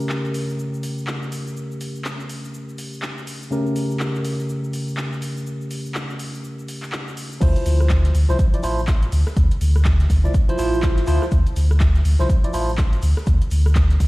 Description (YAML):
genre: deep house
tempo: 123 BPM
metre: 4/4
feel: swing 60% on 16ths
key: unclear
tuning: A4 = 440 Hz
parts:
  - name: barky tine electric piano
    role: stabs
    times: 0.0-12.7 s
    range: C#3 to D5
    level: -25 LUFS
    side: equal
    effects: phaser, sidechain pumping
  - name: deep house drum kit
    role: drums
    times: 0.0-14.1 s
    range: crash cymbal, handclaps, hi-hat, rim click, shaker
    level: -32 LUFS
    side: equal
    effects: overdrive
  - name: sub bass with octave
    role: bass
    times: 7.4-14.1 s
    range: A1 to D2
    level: -18 LUFS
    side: equal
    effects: sidechain pumping
  - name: electronic kick drum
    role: drums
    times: 7.4-14.1 s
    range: none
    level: -17 LUFS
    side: equal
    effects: overdrive
  - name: shaker and snare drum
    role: drums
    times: 7.4-14.1 s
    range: none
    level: -43 LUFS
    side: equal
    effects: none
room: little or no reverb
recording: played on a big sound system in a bare room, stone room reverb, vinyl crackle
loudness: -18 LUFS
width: side -20 dB against mid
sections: 0.0-7.4 A section; 7.4-14.1 B section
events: filter sweep on tine electric piano 0.0-7.4; drop 7.4-14.1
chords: 0.0 A7b9/C#; 7.4 Dm9